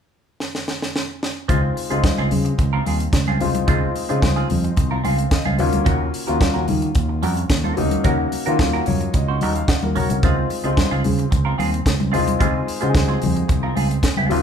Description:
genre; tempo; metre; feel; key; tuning
disco; 110 BPM; 4/4; straight; Db major; A4 = 440 Hz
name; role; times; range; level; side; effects
tight funk drum kit; drums; 0.4-14.4 s; hi-hat, kick drum, snare drum; -21 LUFS; equal; none
clean electric guitar; accompaniment; 1.5-14.3 s; C4 to C5; -27 LUFS; right 4 dB; phaser
warm concert grand piano; accompaniment; 1.5-14.4 s; Gb3 to Gb5; -24 LUFS; left 4 dB; none
overdriven fingered electric bass; bass; 1.5-14.4 s; Cb2 to Eb3; -22 LUFS; right 1 dB; none
congas; percussion; 1.5-14.4 s; none; -25 LUFS; left 2 dB; none
room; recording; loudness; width
moderate large studio reverb, RT60 0.8 s; band playing live in one room; -17 LUFS; side -7 dB against mid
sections
0.0-1.5 A section; 1.5-14.4 B section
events
drum fill 0.4-1.5; grand piano fill 4.8-5.9, 8.6-10.2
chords
0.0 N.C.; 1.5 Dbmaj7; 5.6 Ebm7; 10.2 Dbmaj7

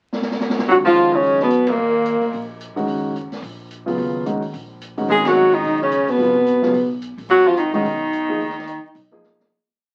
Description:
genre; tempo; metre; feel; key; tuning
modal jazz; 217 BPM; 4/4; swing 59% on 8ths; Eb minor; A4 = 440 Hz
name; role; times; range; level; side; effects
open jazz drum kit; drums; 0.1-9.4 s; hi-hat, kick drum, ride cymbal, snare drum; -30 LUFS; equal; none
warm tenor saxophone; melody; 0.7-2.5, 5.1-9.2 s; Bb3 to Ab4; -18 LUFS; equal; none
bright tenor saxophone; second line; 0.7-2.5, 5.1-9.2 s; Bb2 to Ab3; -25 LUFS; equal; none
warm concert grand piano; accompaniment; 0.7-9.5 s; Db3 to Ab4; -26 LUFS; equal; none
upright bass; bass; 0.7-9.5 s; Gb1 to Gb2; -37 LUFS; equal; none
room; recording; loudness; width
wet small room reverb, RT60 0.6 s; very old 78 rpm record, vinyl crackle; -18 LUFS; mono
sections
0.0-0.7 pickup bar; 0.7-9.5 A section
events
drum fill 0.1-0.7, 9.2; band accent 1.6, 5.2; fade-out 7.7-9.5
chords
0.0 N.C.; 0.7 Ebm11; 5.1 Abm11

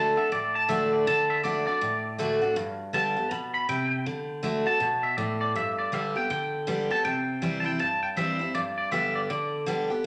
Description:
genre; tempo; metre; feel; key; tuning
rock; 160 BPM; 4/4; swing 62% on 8ths; G major; A4 = 439 Hz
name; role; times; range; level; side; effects
twangy electric guitar; melody; 0.0-9.6 s; D5 to B5; -30 LUFS; equal; spring reverb
picked steel-string acoustic guitar; accompaniment; 0.0-10.0 s; G2 to G4; -30 LUFS; equal; none
room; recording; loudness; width
wet large studio reverb, RT60 0.9 s; none; -27 LUFS; mono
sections
0.0-5.6 A section; 5.6-10.1 B section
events
clean electric guitar solo 0.0-5.6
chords
0.0 D; 2.6 G; 4.1 D; 5.6 G; 7.0 C; 8.5 G

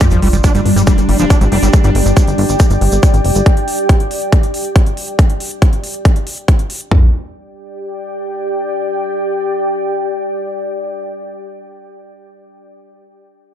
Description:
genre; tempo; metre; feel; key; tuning
psychedelic trance; 139 BPM; 4/4; straight; unclear; A4 = 441 Hz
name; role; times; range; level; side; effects
pulsing gated texture; sustained chords; 0.0-3.5 s; G3 to D4; -20 LUFS; left 1 dB; chorus, built-in reverb, sidechain pumping
screaming distorted acid line; riff; 0.0-1.7 s; F3 to D4; -19 LUFS; moving between left 4 dB and right 3 dB; distortion, chorus, auto-pan, vintage 12-bit sampler grit, sidechain pumping, digital delay
big-room dance drum kit; drums; 0.0-7.0 s; kick drum, toms; -10 LUFS; equal; none
electronic hi-hat; drums; 0.0-6.9 s; none; -27 LUFS; equal; none
egg shaker; percussion; 0.0-3.4 s; none; -27 LUFS; right 3 dB; none
sub drop; sound effects; 0.0-1.7 s; none; -20 LUFS; equal; none
deep dark ambient pad; texture; 0.0-11.1 s; G4 to G5; -20 LUFS; equal; chorus, built-in reverb, sidechain pumping
plucky analog bass; bass; 0.1-3.4 s; F1 to Ab1; -14 LUFS; equal; none
room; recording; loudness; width
light reverb, digital ambience; dark, warm production; -11 LUFS; side -10 dB against mid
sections
0.0-6.9 A section; 6.9-10.4 B section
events
impact 0.0-1.7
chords
0.0 G5

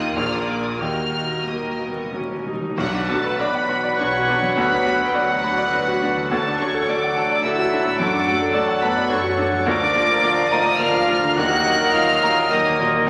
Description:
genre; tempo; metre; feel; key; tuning
classical, romantic movement for piano and orchestra; 89-109 BPM; 3/4; rubato; B minor, Eb minor from 9.7 s; A4 = 441 Hz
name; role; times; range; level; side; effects
clear baby grand piano; melody; 0.0-13.1 s; Bb1 to B5; -26 LUFS; equal; none
clear studio violin section; melody; 0.0-12.8 s; F#5 to Gb6; -27 LUFS; equal; none
rich studio violin section; second line; 0.0-12.9 s; Eb4 to Eb5; -36 LUFS; equal; none
warm studio viola section; accompaniment; 0.0-12.9 s; F3 to Gb4; -34 LUFS; equal; none
mellow French horn section; sustained chords; 0.0-13.1 s; A3 to Bb4; -37 LUFS; equal; none
rich symphonic double bass section; bass; 0.0-13.0 s; Bb1 to F#2; -37 LUFS; equal; none
warm studio cello section; bass; 0.0-12.8 s; F#3 to Bb4; -33 LUFS; equal; none
timpani; percussion; 0.8-2.8, 11.4-12.2 s; Eb3; -37 LUFS; equal; none
bright clarinet; second line; 2.8-12.8 s; F#4 to Gb5; -34 LUFS; equal; none
clear oboe; second line; 2.8-13.1 s; A4 to B4; -28 LUFS; equal; none
mellow hollow small flute group; second line; 2.8-12.8 s; F#4 to Gb5; -32 LUFS; equal; none
mellow bassoon; accompaniment; 2.8-13.1 s; Eb3 to F#3; -34 LUFS; equal; none
clear trombone section; sustained chords; 2.8-13.1 s; Bb2 to F#3; -34 LUFS; equal; none
clear trumpet section; stabs; 2.8-13.1 s; D5 to F#5; -28 LUFS; equal; none
clash cymbals and concert bass drum; percussion; 2.8-4.0 s; none; -41 LUFS; equal; none
room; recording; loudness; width
wet scoring stage reverb, RT60 1.6 s; vinyl crackle; -20 LUFS; mono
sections
0.0-2.8 A section; 2.8-13.1 B section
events
timpani fill 0.8-2.8; band accent 2.8-3.4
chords
0.2 Bb; 0.8 Ebm; 2.8 Bm; 4.6 Bm/D; 6.3 D; 8.0 D/F#; 9.7 Bb/D; 11.4 Ebm

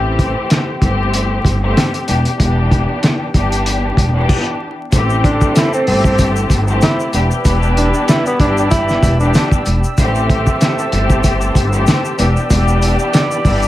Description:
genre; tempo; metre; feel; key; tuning
hip hop, boom-bap hip-hop; 95 BPM; 4/4; swing 55% on 16ths; A minor; A4 = 440 Hz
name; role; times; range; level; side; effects
warm studio string section; accompaniment; 0.0-13.7 s; E3 to G4; -19 LUFS; left 2 dB; high-pass filter, low-pass filter
upright bass; bass; 0.0-13.7 s; E1 to A1; -16 LUFS; equal; none
cloth-damped thuddy drum kit; drums; 0.2-13.6 s; crash cymbal, handclaps, hi-hat, kick drum, snare drum; -15 LUFS; equal; none
lush unison pad; sustained chords; 5.8-13.7 s; G4 to E6; -26 LUFS; equal; chorus, high-pass filter, low-pass filter
warm horn section; stabs; 4.9-13.7 s; E3 to E5; -23 LUFS; right 2 dB; high-pass filter, low-pass filter, digital delay
tube shaker; percussion; 4.9-13.7 s; none; -32 LUFS; left 4 dB; none
breathy tenor saxophone; melody; 5.2-9.5 s; B3 to E4; -18 LUFS; right 1 dB; high-pass filter, low-pass filter, digital delay
room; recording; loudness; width
light reverb; vinyl crackle; -12 LUFS; side -14 dB against mid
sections
0.0-4.9 A section; 4.9-13.7 B section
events
stop 4.3-4.9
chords
0.0 Am7; 2.1 Em7; 4.9 Am7; 7.1 Em7; 10.0 Am7; 12.2 Em7

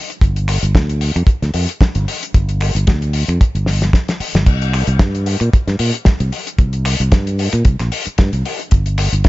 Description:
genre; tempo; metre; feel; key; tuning
nu-disco, nu disco; 113 BPM; 4/4; swing 55% on 16ths; unclear; A4 = 441 Hz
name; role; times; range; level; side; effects
damped 70s drum kit; drums; 0.1-9.3 s; crash cymbal, finger snaps, hi-hat, shaker, snare drum; -20 LUFS; left 2 dB; small room ambience
fingered electric bass; bass; 0.2-9.3 s; G1 to Bb2; -16 LUFS; equal; tube saturation
kick drum; drums; 0.2-9.3 s; none; -11 LUFS; equal; small room ambience
room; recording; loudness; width
little or no reverb; nothing above 7.7 kHz; -13 LUFS; side -18 dB against mid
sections
0.0-9.3 A section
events
drum fill 3.7-4.5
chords
none

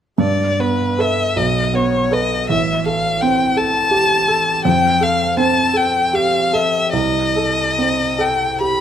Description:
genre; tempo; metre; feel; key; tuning
classical, impressionist duo for violin and grand piano; 47-57 BPM (dotted quarters); 6/8; rubato; G mixolydian; A4 = 437 Hz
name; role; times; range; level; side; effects
rich violin; melody; 0.2-8.8 s; B4 to B5; -17 LUFS; left 3 dB; none
clear concert grand piano; accompaniment; 0.2-8.8 s; A1 to B4; -18 LUFS; right 2 dB; none
room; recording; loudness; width
moderate recital hall reverb, RT60 1.3 s; close, detailed microphones, lossy compression artefacts; -14 LUFS; side -9 dB against mid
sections
0.2-8.8 A section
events
none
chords
0.2 Gadd9; 1.4 B9; 2.5 Am7; 4.7 Fadd9; 6.9 Cm6

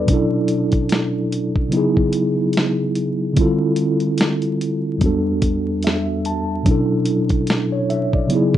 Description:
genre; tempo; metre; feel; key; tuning
lo-fi hip hop; 73 BPM; 4/4; swing 56% on 16ths; unclear; A4 = 442 Hz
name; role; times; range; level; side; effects
mellow tine electric piano; accompaniment; 0.0-8.6 s; E2 to A5; -17 LUFS; equal; medium stereo tremolo, cassette tape, low-pass filter
dusty soul sampler-style drum kit; drums; 0.1-8.6 s; hi-hat, kick drum, snare drum; -20 LUFS; equal; none
room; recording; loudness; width
wet studio reverb, RT60 0.6 s; rough home demo mix, vinyl crackle, nothing above 10.5 kHz; -17 LUFS; side -11 dB against mid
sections
0.0-8.6 A section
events
none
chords
0.1 Bm11; 1.7 C#m11; 3.4 Dm11; 5.0 Em11; 6.7 Bm11

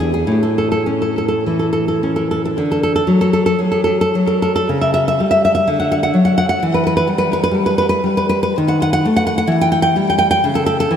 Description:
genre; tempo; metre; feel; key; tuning
romantic piece for solo classical guitar; 50-67 BPM; 2/4; rubato; D major; A4 = 440 Hz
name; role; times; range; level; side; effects
nylon-string guitar; solo; 0.0-11.0 s; E2 to G5; -13 LUFS; equal; ping-pong delay
room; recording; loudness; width
wet huge ambient reverb, RT60 6.3 s; dreamy mix soaked in reverb; -13 LUFS; side -8 dB against mid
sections
0.0-2.6 A section; 2.6-11.0 B section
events
none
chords
0.3 A; 2.6 D; 4.7 C#dim; 5.7 D; 6.6 Em; 8.6 D#dim; 9.5 Em; 10.4 A/C#

